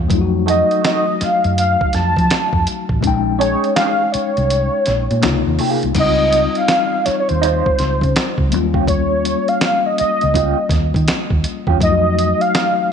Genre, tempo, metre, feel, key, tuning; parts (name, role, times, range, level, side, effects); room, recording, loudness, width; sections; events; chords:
R&B, neo-soul; 82 BPM; 4/4; swing 64% on 16ths; A4 = 440 Hz
mellow tine electric piano; accompaniment; 0.0-12.9 s; C3 to G5; -21 LUFS; left 12 dB; medium stereo tremolo
vintage muted fingered electric bass; bass; 0.0-12.3 s; A1 to F3; -19 LUFS; right 1 dB
dusty soul sampler-style drum kit; drums; 0.1-12.8 s; crash cymbal, hi-hat, kick drum, snare drum; -20 LUFS; right 1 dB
warm velvety synth lead; melody; 0.5-12.9 s; C5 to A5; -17 LUFS; right 1 dB; chorus
electric guitar through a small old amp; second line; 0.5-11.8 s; A3 to C5; -23 LUFS; right 15 dB; wah, tremolo
light reverb, digital ambience; 1960s-style stereo with parts hard left and right, nothing above 10.6 kHz; -14 LUFS; side -7 dB against mid
0.0-5.9 A section; 5.9-12.9 B section
kick muted 4.5-5.9
0.1 F7b9; 3.0 Bbm11; 5.2 Db6; 5.9 Dbmaj9; 8.5 Eb9; 11.8 F7b9